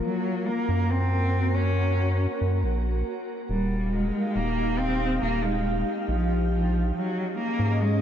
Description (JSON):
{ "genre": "IDM", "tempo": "139 BPM", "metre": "4/4", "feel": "swing 62% on 16ths", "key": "unclear", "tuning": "A4 = 440 Hz", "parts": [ { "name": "dark cello", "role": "melody", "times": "0.0-8.0 s", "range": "F3 to Db4", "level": "-28 LUFS", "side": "equal", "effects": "ping-pong delay" }, { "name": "glassy FM pad", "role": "sustained chords", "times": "0.0-8.0 s", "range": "Bb3 to F5", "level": "-30 LUFS", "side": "equal", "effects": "ensemble chorus, built-in reverb, vintage 12-bit sampler grit" }, { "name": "round analog bass", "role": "bass", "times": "0.7-8.0 s", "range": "Eb1 to Ab2", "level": "-25 LUFS", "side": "equal", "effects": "none" } ], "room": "light reverb, studio ambience", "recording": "dark, warm production", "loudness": "-23 LUFS", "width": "side -9 dB against mid", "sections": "0.0-8.0 A section", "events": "none", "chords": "0.0 Gb; 3.5 Ebadd9; 6.9 Absus4" }